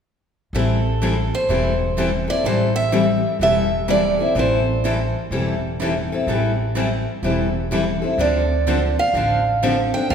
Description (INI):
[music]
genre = acoustic string swing (jazz manouche)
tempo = 125 BPM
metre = 4/4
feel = swing 66% on 8ths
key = A minor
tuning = A4 = 441 Hz
[part]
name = picked steel-string acoustic guitar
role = accompaniment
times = 0.5-10.1 s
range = D3 to A4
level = -22 LUFS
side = left 3 dB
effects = none
[part]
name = picked steel-string acoustic guitar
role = accompaniment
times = 0.5-10.1 s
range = D3 to A4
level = -28 LUFS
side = right 3 dB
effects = none
[part]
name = upright bass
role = bass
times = 0.5-10.1 s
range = E1 to D2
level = -23 LUFS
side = equal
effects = none
[part]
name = picked steel-string acoustic guitar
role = melody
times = 0.6-5.1, 8.2-10.1 s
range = A4 to G5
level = -21 LUFS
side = right 2 dB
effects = none
[sound]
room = wet recital hall reverb, RT60 1.8 s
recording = recorded in a church or concert hall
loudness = -17 LUFS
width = side -7 dB against mid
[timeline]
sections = 0.5-10.1 A section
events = none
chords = 0.5 Am7; 8.2 Dm7